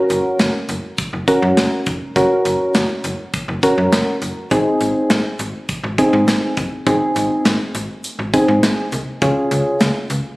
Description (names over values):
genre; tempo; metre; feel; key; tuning
synth-pop; 102 BPM; 4/4; straight; Ab mixolydian; A4 = 440 Hz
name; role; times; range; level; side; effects
soft electric-piano-like synth keys; accompaniment; 0.0-9.9 s; C4 to Bb4; -17 LUFS; equal; chorus
slap-like FM bass; bass; 0.1-10.2 s; F1 to Ab2; -21 LUFS; equal; none
modern studio drum kit; drums; 0.1-10.2 s; hi-hat, kick drum, snare drum; -20 LUFS; equal; none
room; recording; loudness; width
wet lush hall reverb, RT60 2.0 s; recorded on a phone in the room, studio reverb, compression; -15 LUFS; side -21 dB against mid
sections
0.0-10.4 A section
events
none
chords
0.0 Gb; 4.5 Ab; 9.2 Db